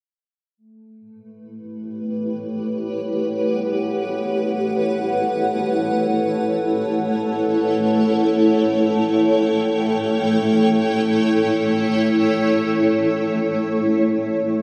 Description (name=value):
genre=ambient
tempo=free time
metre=none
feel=none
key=A mixolydian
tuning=A4 = 439 Hz
part: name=granular cloud pad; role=sustained chords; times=1.5-14.6 s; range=A3 to G5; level=-20 LUFS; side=equal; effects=built-in reverb
part: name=analog drone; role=drone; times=1.7-13.1 s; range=A3 to A4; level=-29 LUFS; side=equal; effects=chorus
room=wet lush hall reverb, RT60 2.7 s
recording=none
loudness=-20 LUFS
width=mono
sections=0.6-13.0 A section; 13.0-14.6 B section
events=none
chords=0.6 A13; 13.0 A9